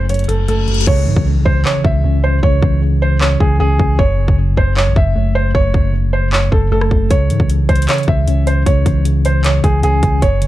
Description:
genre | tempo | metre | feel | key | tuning
hip hop, trap | 154 BPM | 4/4 | half-time | C# harmonic minor | A4 = 440 Hz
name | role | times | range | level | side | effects
felt-muted upright piano | melody | 0.0-10.5 s | G#4 to E5 | -19 LUFS | right 2 dB | ping-pong delay
mellow tine electric piano | accompaniment | 0.0-10.5 s | F#2 to C#4 | -17 LUFS | equal | fast stereo tremolo
warm symphonic string section | sustained chords | 0.0-0.8 s | F#3 to A4 | -36 LUFS | left 1 dB | none
long sustained 808-style bass | bass | 0.0-10.5 s | F#1 to G#2 | -16 LUFS | equal | none
trap drum kit | drums | 0.1-10.5 s | crash cymbal, handclaps, hi-hat, kick drum, rim click | -16 LUFS | equal | none
reverse cymbal and impact | sound effects | 0.3-2.4 s | none | -26 LUFS | left 2 dB | none
room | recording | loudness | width
little or no reverb | dark, warm production | -11 LUFS | side -15 dB against mid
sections
0.9-10.5 A section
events
reverse cymbal 0.3-0.9; hi-hats muted 0.9-7.1; impact 0.9-2.4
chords
0.0 F#m; 0.9 C#m; 4.0 F#m; 7.1 C#m

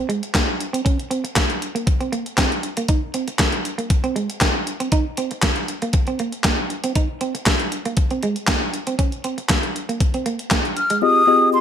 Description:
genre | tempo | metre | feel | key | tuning
early-eighties boogie funk | 118 BPM | 4/4 | straight | unclear | A4 = 435 Hz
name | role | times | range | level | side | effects
semi-hollow electric guitar | riff | 0.0-11.0 s | Ab3 to Eb4 | -25 LUFS | right 4 dB | lush chorus
crisp 8-bit digital drum machine | drums | 0.1-11.0 s | handclaps, hi-hat, kick drum, snare drum | -20 LUFS | equal | gated reverb
breathy mellow silver concert flute | melody | 10.8-11.6 s | C6 to F6 | -14 LUFS | left 2 dB | none
mellow tine electric piano | accompaniment | 11.0-11.6 s | C4 to Eb5 | -17 LUFS | left 3 dB | medium stereo tremolo
room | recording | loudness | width
light reverb, digital ambience | none | -18 LUFS | side -9 dB against mid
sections
0.0-11.0 A section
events
none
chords
0.0 Absus2; 0.6 N.C.; 2.9 Abadd9 (rootless); 4.7 C7(no3); 7.0 Abadd9 (rootless); 8.7 N.C.; 11.0 Fm9

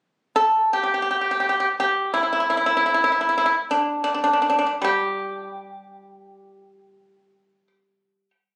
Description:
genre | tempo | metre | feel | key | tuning
chinese traditional, Chinese solo plucked strings | free time | none | none | unclear | A4 = 439 Hz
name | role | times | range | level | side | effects
pipa | solo | 0.4-8.3 s | G3 to A4 | -21 LUFS | equal | none
room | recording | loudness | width
moderate recital hall reverb, RT60 1.7 s | recorded on a phone in the room, studio ambience, compression | -21 LUFS | mono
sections
0.0-8.6 A section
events
none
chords
none

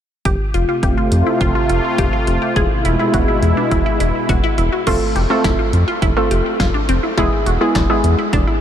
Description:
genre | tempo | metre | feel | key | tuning
synth-pop | 104 BPM | 4/4 | straight | unclear | A4 = 440 Hz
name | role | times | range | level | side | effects
sweeping resonant pad | sustained chords | 0.3-4.8 s | B2 to F4 | -20 LUFS | equal | chorus
resonant blip pluck | arpeggios | 0.3-8.6 s | C4 to G#4 | -22 LUFS | left 1 dB | phaser, ping-pong delay
round analog bass | bass | 0.3-8.4 s | E1 to F2 | -18 LUFS | equal | none
punchy analog drum machine | drums | 0.3-8.5 s | crash cymbal, hi-hat, kick drum, snare drum | -20 LUFS | equal | none
warbly dusty pluck | accompaniment | 4.9-8.6 s | G#3 to A4 | -18 LUFS | right 1 dB | chorus
room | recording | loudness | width
moderate huge ambient reverb, RT60 9.1 s | dreamy mix soaked in reverb | -14 LUFS | side -9 dB against mid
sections
0.3-4.9 A section; 4.9-8.6 B section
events
none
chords
0.3 F; 2.6 E; 4.9 F; 7.2 E

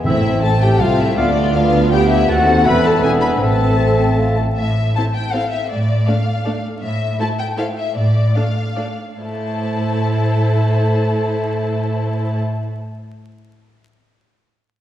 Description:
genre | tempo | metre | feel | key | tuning
quick classical-period movement for symphony orchestra | 140-163 BPM | 3/4 | straight | A minor | A4 = 438 Hz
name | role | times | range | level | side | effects
rich studio violin section | second line | 0.0-12.4 s | A3 to D5 | -25 LUFS | left 1 dB | none
warm clarinet | second line | 0.0-4.4 s | B3 to D4 | -27 LUFS | left 1 dB | none
mellow bassoon | accompaniment | 0.0-4.6 s | A3 to F#4 | -22 LUFS | left 1 dB | none
rich studio viola section | accompaniment | 0.0-12.4 s | A3 to B4 | -23 LUFS | right 1 dB | none
rich studio cello section | bass | 0.0-12.4 s | C2 to A2 | -19 LUFS | right 1 dB | none
warm studio double bass section | bass | 0.0-4.4 s | E1 to D#2 | -20 LUFS | right 1 dB | none
timpani | percussion | 0.0-0.6 s | A2 | -25 LUFS | equal | none
rich studio violin section | melody | 0.1-12.4 s | D5 to B5 | -23 LUFS | left 5 dB | none
clear oboe | second line | 0.1-4.4 s | E5 to A5 | -27 LUFS | equal | none
warm French horn section | sustained chords | 0.1-4.4 s | B3 to B4 | -23 LUFS | left 1 dB | none
room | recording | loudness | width
wet scoring stage reverb, RT60 1.7 s | heard from further back in the room, vinyl crackle | -14 LUFS | side -11 dB against mid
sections
0.0-4.6 A section; 4.6-9.2 B section; 9.2-11.6 C section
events
slowing down 6.3-9.2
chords
0.0 Am; 1.2 Bdim/D; 2.3 D#dim7; 2.7 Am/E; 3.0 E7; 3.4 Am; 5.7 Dm/A; 6.8 A5; 8.0 Dm/A; 9.2 Am

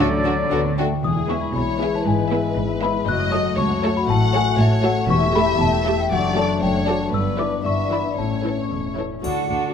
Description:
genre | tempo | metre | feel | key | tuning
cinematic, playful, whimsical film cue | 118 BPM | 2/4 | straight | E major, D major from 5.1 s | A4 = 438 Hz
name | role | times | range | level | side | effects
celesta | melody | 0.0-8.9 s | D5 to F#6 | -26 LUFS | left 6 dB | none
dark studio violin section | melody | 0.0-9.7 s | G#4 to F#5 | -27 LUFS | left 2 dB | none
mellow clarinet | second line | 0.0-0.7 s | A4 | -32 LUFS | right 1 dB | none
mellow hollow flute section | second line | 0.0-0.8, 9.2-9.7 s | D5 to F#5 | -27 LUFS | right 4 dB | none
warm oboe | second line | 0.0-0.8 s | D5 | -29 LUFS | right 3 dB | none
warm studio violin section | second line | 0.0-9.2 s | F#4 to E5 | -30 LUFS | left 2 dB | none
dark studio viola section | accompaniment | 0.0-9.7 s | E3 to G4 | -27 LUFS | right 3 dB | none
mellow bassoon | accompaniment | 0.0-0.8 s | F#3 | -31 LUFS | right 1 dB | none
warm French horn section | sustained chords | 0.0-9.0 s | F#3 to G4 | -26 LUFS | left 3 dB | none
concert harp | arpeggios | 0.0-9.7 s | E2 to B5 | -25 LUFS | left 6 dB | none
dark studio double bass section | bass | 0.0-9.6 s | E1 to D2 | -26 LUFS | right 3 dB | none
warm studio cello section | bass | 0.0-9.6 s | C#2 to D3 | -28 LUFS | right 2 dB | none
triangle | percussion | 9.2-9.7 s | none | -41 LUFS | left 2 dB | none
room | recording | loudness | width
moderate recital hall reverb, RT60 1.6 s | none | -18 LUFS | side -7 dB against mid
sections
0.0-1.0 A section; 1.0-9.2 B section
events
none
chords
0.0 D; 1.0 E; 2.1 E/G#; 3.1 F#m; 4.1 F#m/A; 5.1 A7/E; 6.1 D/F#; 7.1 Em7/G; 8.2 A; 9.2 D

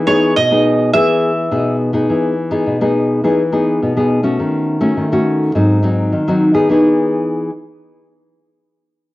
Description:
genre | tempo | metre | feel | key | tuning
samba | 104 BPM | 4/4 | straight | E major | A4 = 439 Hz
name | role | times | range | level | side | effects
nylon-string guitar | accompaniment | 0.0-7.5 s | G#2 to G#4 | -13 LUFS | left 1 dB | none
mandolin | melody | 0.1-1.8 s | C#5 to E5 | -15 LUFS | right 2 dB | cassette tape, plate reverb
room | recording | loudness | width
wet studio reverb, RT60 0.7 s | home recording on cassette | -12 LUFS | side -17 dB against mid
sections
0.0-2.1 A section; 2.1-6.7 B section; 6.7-9.0 C section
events
none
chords
0.0 Emaj7; 4.4 D#m7b5; 5.5 G#7; 6.7 Emaj7

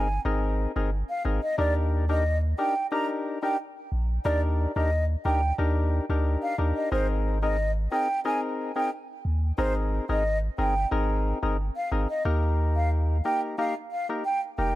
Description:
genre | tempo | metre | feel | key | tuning
dancehall | 90 BPM | 4/4 | straight | Eb major | A4 = 440 Hz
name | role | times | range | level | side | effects
mellow hollow silver concert flute | melody | 0.0-14.7 s | C5 to Bb5 | -30 LUFS | right 1 dB | tape echo
percussive organ stab | accompaniment | 0.0-14.7 s | Bb3 to Bb4 | -30 LUFS | left 3 dB | chorus
punchy sub bass | bass | 0.0-14.8 s | F1 to Eb2 | -25 LUFS | equal | none
room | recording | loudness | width
small room reverb | none | -24 LUFS | side -16 dB against mid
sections
0.0-12.3 A section; 12.3-14.8 B section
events
none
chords
0.0 Abadd9; 1.6 Ebmaj7; 6.9 Abadd9; 12.3 Eb

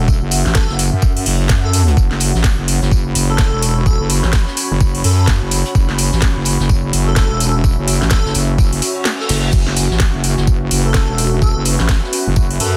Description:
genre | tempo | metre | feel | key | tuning
bass house | 127 BPM | 4/4 | swing 60% on 16ths | F# minor | A4 = 440 Hz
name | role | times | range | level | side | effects
deep dark ambient pad | sustained chords | 0.0-12.8 s | C#4 to E5 | -30 LUFS | equal | chorus, built-in reverb, sidechain pumping
wobble bass | bass | 0.0-12.8 s | E1 to F#2 | -19 LUFS | equal | chorus, tube saturation, sidechain pumping
airy breathy pad | texture | 0.0-12.8 s | C#4 to B5 | -29 LUFS | equal | chorus, sidechain pumping
electronic kick drum | drums | 0.1-12.5 s | none | -16 LUFS | equal | none
jazz brush drum kit | drums | 0.1-12.7 s | hi-hat, snare drum, tambourine | -30 LUFS | equal | sidechain pumping on hats, high-pass filter on hats, soft clipping on snare, high-pass filter on snare, sidechain pumping on perc, high-pass filter on perc, high-pass filter on room
garage drum kit | drums | 0.3-12.7 s | crash cymbal, hi-hat, snare drum | -22 LUFS | equal | none
airy dreamy lead | melody | 0.6-12.8 s | A4 | -28 LUFS | equal | chorus, digital delay
reverse cymbal | sound effects | 8.9-9.5 s | none | -30 LUFS | equal | none
room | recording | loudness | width
studio ambience | dense, heavily limited modern master | -15 LUFS | mono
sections
0.0-12.8 A section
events
reverse cymbal 8.9-9.5; kick drops out 9.1-9.5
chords
0.0 F#5

